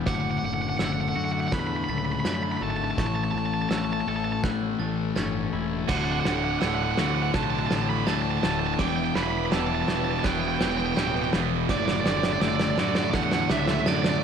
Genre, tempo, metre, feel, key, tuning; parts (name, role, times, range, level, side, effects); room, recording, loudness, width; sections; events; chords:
post-rock; 83 BPM; 4/4; straight; D major; A4 = 440 Hz
warm symphonic string section; sustained chords; 0.0-14.2 s; E3 to B4; -40 LUFS; right 1 dB
glockenspiel with hard plastic mallets; arpeggios; 0.0-14.2 s; C#6 to A6; -38 LUFS; right 6 dB; slapback echo
twangy electric guitar; arpeggios; 0.0-14.2 s; D2 to A4; -37 LUFS; right 1 dB; slapback echo
thick fuzz guitar; riff; 0.0-14.2 s; D2 to A3; -29 LUFS; left 8 dB; distortion
fuzz picked electric bass; bass; 0.0-14.2 s; D1 to F#2; -32 LUFS; right 1 dB; overdrive
biting overdriven guitar; melody; 0.1-14.2 s; D5 to B5; -30 LUFS; right 3 dB; slapback echo
loose indie drum kit; drums; 0.1-14.2 s; crash cymbal, kick drum, snare drum; -29 LUFS; right 1 dB
tight distorted guitar; riff; 5.9-14.2 s; D2 to E3; -29 LUFS; right 14 dB; distortion
light reverb, studio ambience; -23 LUFS; side -7 dB against mid
0.0-14.2 A section
build-up 0.0-14.2; drum fill 0.0-14.2
0.1 D/F#; 3.0 Aadd9; 5.9 D; 8.8 Em; 11.7 D/F#